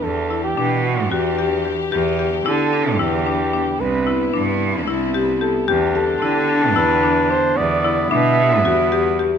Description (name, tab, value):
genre	contemporary instrumental, chamber music in an uneven meter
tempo	223 BPM (eighths)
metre	7/8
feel	straight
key	E minor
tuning	A4 = 440 Hz
part	warm flugelhorn	melody	0.0-9.2 s	F#4 to E5	-22 LUFS	right 3 dB	none
part	warm studio string section	sustained chords	0.0-9.4 s	C3 to G4	-27 LUFS	left 1 dB	none
part	marimba with medium hard mallets	arpeggios	0.0-9.3 s	D4 to G4	-21 LUFS	left 8 dB	none
part	bright cello	bass	0.0-9.3 s	C2 to D3	-21 LUFS	right 5 dB	none
part	bright clarinet	second line	5.7-9.4 s	B3 to D4	-21 LUFS	left 2 dB	none
room	light reverb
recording	close, detailed microphones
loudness	-16 LUFS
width	side -7 dB against mid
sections	0.0-9.4 A section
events	none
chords	0.0 Em7; 1.9 G/E; 3.8 Cmaj7; 5.7 G/E; 7.6 Em7